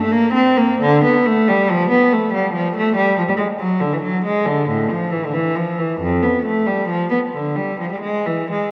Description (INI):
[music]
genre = classical, baroque-style suite movement for unaccompanied cello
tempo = 82-95 BPM (dotted quarters)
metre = 12/8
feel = rubato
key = unclear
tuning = A4 = 439 Hz
[part]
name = rich cello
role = solo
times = 0.0-8.7 s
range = F2 to C4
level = -18 LUFS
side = equal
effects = none
[sound]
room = wet concert hall reverb, RT60 1.9 s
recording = worn, warbling old tape, cassette tape, warbly pitch drift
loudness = -18 LUFS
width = mono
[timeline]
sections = 0.0-8.7 A section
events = none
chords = none